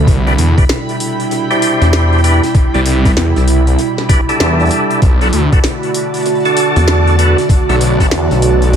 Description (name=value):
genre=glitch hop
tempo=97 BPM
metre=4/4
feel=swing 63% on 16ths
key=unclear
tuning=A4 = 439 Hz
part: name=warbly tape-like pad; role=sustained chords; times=0.0-8.8 s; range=B2 to F#4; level=-19 LUFS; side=right 2 dB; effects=chorus, built-in reverb, sidechain pumping
part: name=phased detuned saw bass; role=bass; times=0.0-8.7 s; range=B1 to E2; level=-12 LUFS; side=equal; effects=phaser
part: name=airy breathy pad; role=texture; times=0.0-8.8 s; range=D4 to B5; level=-19 LUFS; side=right 2 dB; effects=chorus, sidechain pumping
part: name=electronic kick drum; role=drums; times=0.1-8.1 s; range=none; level=-11 LUFS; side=equal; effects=none
part: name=glitchy drum kit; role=drums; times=0.1-8.8 s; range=hi-hat, snare drum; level=-21 LUFS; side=equal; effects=dub echo
part: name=percussive tonewheel organ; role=stabs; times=0.3-8.1 s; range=D4 to E5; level=-17 LUFS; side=left 1 dB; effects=overdrive, fast rotary speaker, vintage 12-bit sampler grit, sidechain pumping, dub echo
part: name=rubbery square bass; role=bass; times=1.8-2.4, 6.8-8.8 s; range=B1 to E2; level=-10 LUFS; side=equal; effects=none
room=light reverb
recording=echo-heavy mix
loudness=-10 LUFS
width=side -8 dB against mid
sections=0.0-8.8 A section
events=none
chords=0.1 Cmaj7; 5.0 Bm7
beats=| 0.07 0.69 1.31 1.93 | 2.55 3.17 3.78 4.40 | 5.02 5.64 6.26 6.88 | 7.50 8.11 8.73